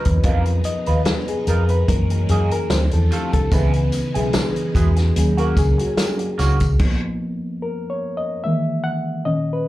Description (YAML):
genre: lush 1970s-style soul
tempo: 73 BPM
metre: 4/4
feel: swing 54% on 16ths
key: C# dorian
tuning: A4 = 439 Hz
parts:
  - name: reed electric piano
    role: accompaniment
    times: 0.0-9.7 s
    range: A#2 to F#5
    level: -22 LUFS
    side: left 1 dB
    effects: plate reverb
  - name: string machine, full ensemble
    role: sustained chords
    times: 0.0-6.8 s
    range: C#3 to A#5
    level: -30 LUFS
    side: equal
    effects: phaser, ensemble chorus, plate reverb
  - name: electric guitar through a small old amp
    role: riff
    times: 0.0-6.7 s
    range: E3 to B4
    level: -28 LUFS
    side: right 4 dB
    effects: wah, slapback echo
  - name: vintage drum kit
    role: drums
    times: 0.0-7.0 s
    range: crash cymbal, hi-hat, kick drum, snare drum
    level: -21 LUFS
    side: equal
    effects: none
  - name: vintage muted fingered electric bass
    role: bass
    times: 0.1-6.8 s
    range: B1 to F#2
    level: -18 LUFS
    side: equal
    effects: none
  - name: tambourine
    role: percussion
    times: 3.5-6.8 s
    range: none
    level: -40 LUFS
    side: left 1 dB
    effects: none
room: light reverb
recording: live gig heard through the venue's PA, club ambience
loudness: -17 LUFS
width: side -16 dB against mid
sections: 0.0-9.7 A section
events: reed electric piano solo 0.0-9.7; stop 6.8-9.7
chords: 0.2 G#m69; 1.9 F#13; 2.7 Dm7; 3.5 C#m7; 5.2 D#m7; 6.8 Bmaj9#11/E#; 8.4 F#13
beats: | 0.25 1.07 1.89 2.71 | 3.53 4.34 5.16 5.98 | 6.80 7.62 8.44 9.26